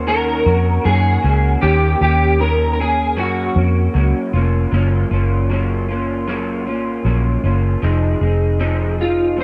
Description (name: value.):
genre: indie pop, bedroom pop.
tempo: 77 BPM.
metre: 4/4.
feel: swing 55% on 16ths.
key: Gb lydian.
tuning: A4 = 440 Hz.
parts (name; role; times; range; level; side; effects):
electric guitar through a small old amp; melody; 0.0-4.3, 9.0-9.4 s; F4 to Bb4; -20 LUFS; equal; ensemble chorus, slapback echo.
electric guitar through a small old amp; accompaniment; 0.0-9.4 s; Eb3 to Ab4; -24 LUFS; equal; analog chorus, vibrato effect.
vintage muted fingered electric bass; bass; 0.0-9.4 s; F1 to Gb2; -19 LUFS; equal; none.
room: light reverb, digital ambience.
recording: none.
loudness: -17 LUFS.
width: mono.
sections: 0.0-4.7 A section; 4.7-7.8 B section; 7.8-9.4 C section.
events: none.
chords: 0.0 Ebm7; 1.6 Eb7; 3.2 Gbmaj7; 7.8 Fm7.